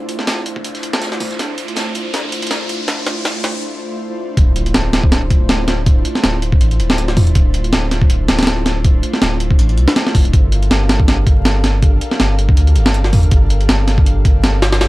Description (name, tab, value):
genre	drum and bass, jungle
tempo	161 BPM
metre	4/4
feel	swing 55% on 16ths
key	D minor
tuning	A4 = 440 Hz
part	airy breathy pad	sustained chords	0.0-14.9 s	A3 to F5	-24 LUFS	equal	chorus
part	riser and sub drop	sound effects	0.4-5.9 s	none	-27 LUFS	equal	none
part	breakbeat sampler-style drum kit	drums	0.1-14.9 s	hi-hat, kick drum, snare drum	-14 LUFS	equal	high-pass filter on hats, high-pass filter on kick, high-pass filter on snare, high-pass filter on room
part	soft-mallet drum kit	drums	0.1-3.5 s	hi-hat, snare drum	-30 LUFS	equal	high-pass filter on hats, high-pass filter on snare, high-pass filter on room
part	soft dub sub bass	bass	4.4-14.9 s	D1 to D2	-16 LUFS	equal	tube saturation
room	little or no reverb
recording	vinyl crackle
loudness	-12 LUFS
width	side -19 dB against mid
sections	0.0-4.4 A section; 4.4-14.9 B section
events	build-up 0.0-4.4; riser 0.4-3.6; drum fill 1.4-3.6; break 3.6-4.4; drop 4.4-14.9; impact 4.4-5.9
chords	0.0 Dm9; 10.3 Gm9